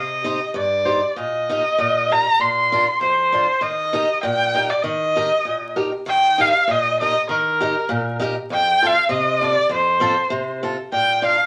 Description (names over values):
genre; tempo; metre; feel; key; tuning
alpine folk, alpine dance band; 98 BPM; 2/4; straight; Eb major; A4 = 440 Hz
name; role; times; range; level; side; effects
clear erhu; melody; 0.0-11.5 s; Bb4 to C6; -20 LUFS; equal; none
picked swing-style acoustic guitar; accompaniment; 0.0-11.4 s; F2 to C5; -27 LUFS; equal; none
room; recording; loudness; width
wet studio reverb, RT60 0.7 s; vinyl crackle; -19 LUFS; mono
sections
0.0-6.1 A section; 6.1-11.5 B section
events
none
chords
0.0 Cm; 1.2 Eb/Bb; 2.4 Bbadd9; 3.6 Eb; 8.5 F; 10.9 Bb